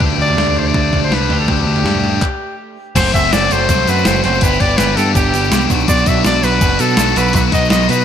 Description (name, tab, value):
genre	indie rock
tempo	164 BPM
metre	4/4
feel	straight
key	unclear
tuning	A4 = 440 Hz
part	high-gain distorted guitar	riff	0.0-8.0 s	E3 to G4	-19 LUFS	left 10 dB	distortion
part	twelve-string electric guitar	riff	0.0-8.0 s	F#3 to G4	-20 LUFS	right 9 dB	lush chorus, analog delay
part	growling picked electric bass	bass	0.0-8.0 s	F#1 to B2	-18 LUFS	equal	overdrive
part	clean 12-bit digital drum machine	drums	0.0-8.0 s	crash cymbal, handclaps, hi-hat, kick drum, snare drum, toms	-18 LUFS	equal	none
part	clear trumpet	melody	0.2-8.0 s	G4 to E5	-18 LUFS	left 1 dB	none
part	tube shaker	percussion	3.0-8.0 s	none	-29 LUFS	right 21 dB	none
room	moderate plate reverb, RT60 1.8 s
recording	dreamy mix soaked in reverb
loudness	-11 LUFS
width	side -9 dB against mid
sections	0.0-3.0 A section; 3.0-8.0 B section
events	stop 2.2-3.0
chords	0.0 Dsus4; 3.0 F#dim; 4.4 Em7/G; 5.7 Bm; 7.4 B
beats	| 0.01 0.38 0.75 1.12 | 1.49 1.85 2.22 2.59 | 2.96 3.33 3.69 4.06 | 4.43 4.79 5.16 5.53 | 5.89 6.26 6.62 6.99 | 7.35 7.72